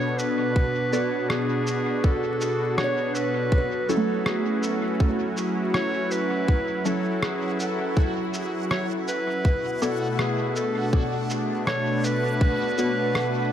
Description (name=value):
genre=ambient dub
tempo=81 BPM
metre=4/4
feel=swing 57% on 16ths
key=unclear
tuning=A4 = 440 Hz
part: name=bright clarinet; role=melody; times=0.0-13.5 s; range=G#4 to C#5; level=-28 LUFS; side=equal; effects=dub echo
part: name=warm analog pad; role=sustained chords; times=0.0-13.5 s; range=B2 to B4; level=-27 LUFS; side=equal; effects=chorus
part: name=electronic shaker and rim click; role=drums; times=0.2-13.3 s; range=none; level=-31 LUFS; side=equal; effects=studio reverb, dub echo
part: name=electronic kick drum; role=drums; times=0.6-12.6 s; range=none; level=-22 LUFS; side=equal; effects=studio reverb
part: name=filtered dub chord stab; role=stabs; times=0.9-13.0 s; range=F#3 to D5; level=-33 LUFS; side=left 1 dB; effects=none
part: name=kalimba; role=arpeggios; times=2.8-5.6 s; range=A3 to C#5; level=-30 LUFS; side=right 3 dB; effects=dub echo
part: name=backwards swelling texture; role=texture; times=4.5-13.5 s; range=F#4 to F#5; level=-34 LUFS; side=right 1 dB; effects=built-in reverb
room=moderate huge ambient reverb, RT60 4.3 s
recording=vinyl crackle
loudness=-22 LUFS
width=side -10 dB against mid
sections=0.0-13.5 A section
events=none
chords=0.0 Bm7; 3.5 F#m7; 9.4 Bm7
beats=| 0.56 1.30 2.04 2.78 | 3.52 4.26 5.00 5.74 | 6.48 7.22 7.97 8.71 | 9.45 10.19 10.93 11.67 | 12.41 13.15